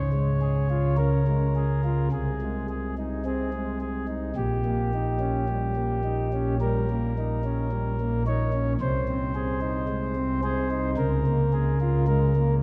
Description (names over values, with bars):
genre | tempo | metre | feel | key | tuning
classical, chorale-style piece for pipe organ | 54 BPM | 4/4 | rubato | Ab major | A4 = 441 Hz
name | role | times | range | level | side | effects
chamber organ, principal | solo | 0.0-12.6 s | Bb1 to Db5 | -26 LUFS | equal | none
room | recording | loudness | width
wet church reverb, RT60 3.4 s | none | -26 LUFS | mono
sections
0.0-12.6 A section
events
none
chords
0.0 Db; 2.1 Ab/C; 4.4 Eb7/Bb; 8.8 Ab/C; 11.0 Bbm7/Db